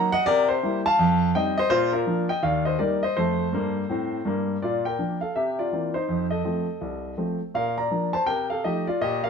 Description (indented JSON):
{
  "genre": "jazz, stride piano",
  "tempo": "165 BPM",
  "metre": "4/4",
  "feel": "swing 62% on 8ths",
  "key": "unclear",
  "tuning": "A4 = 440 Hz",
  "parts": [
    { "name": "clear grand piano", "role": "solo", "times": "0.0-9.3 s", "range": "C2 to Bb5", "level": "-22 LUFS", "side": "left 1 dB", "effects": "none" }
  ],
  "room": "moderate studio reverb, RT60 0.9 s",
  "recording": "band playing live in one room",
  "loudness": "-22 LUFS",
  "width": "side -6 dB against mid",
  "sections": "0.0-4.6 A section; 4.6-9.3 B section",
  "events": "none",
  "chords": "0.3 C7; 1.0 F9; 1.7 Bb; 2.4 Eb; 3.2 F; 4.6 Bb; 5.4 C7; 6.1 F7; 7.5 Bb; 8.3 F7/C",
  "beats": "| 0.26 0.62 0.99 1.35 | 1.71 2.08 2.44 2.80 | 3.17 3.53 3.90 4.26 | 4.62 4.99 5.35 5.72 | 6.08 6.45 6.82 7.18 | 7.54 7.91 8.28 8.64 | 9.01"
}